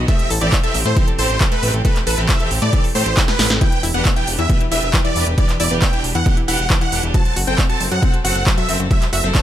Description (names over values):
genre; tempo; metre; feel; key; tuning
uplifting trance; 136 BPM; 4/4; straight; E minor; A4 = 439 Hz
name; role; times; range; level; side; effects
clear studio string section; sustained chords; 0.0-9.4 s; E3 to C5; -25 LUFS; equal; vintage 12-bit sampler grit, sidechain pumping
analog pluck; arpeggios; 0.0-9.4 s; B2 to A4; -25 LUFS; left 4 dB; chorus, vintage 12-bit sampler grit, sidechain pumping, digital delay
fat analog bass; bass; 0.0-9.3 s; E1 to A2; -21 LUFS; equal; tube saturation, sidechain pumping
big supersaw lead; melody; 0.1-9.4 s; B4 to A5; -22 LUFS; right 1 dB; sidechain pumping, digital delay
big-room dance drum kit; drums; 0.1-9.4 s; handclaps, hi-hat, snare drum; -22 LUFS; right 1 dB; none
electronic kick drum; drums; 0.1-9.4 s; none; -17 LUFS; equal; none
room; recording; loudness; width
little or no reverb; none; -14 LUFS; side -12 dB against mid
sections
0.0-9.4 A section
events
drum fill 3.2-3.6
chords
0.1 Am7; 3.6 Em7; 7.1 F#dim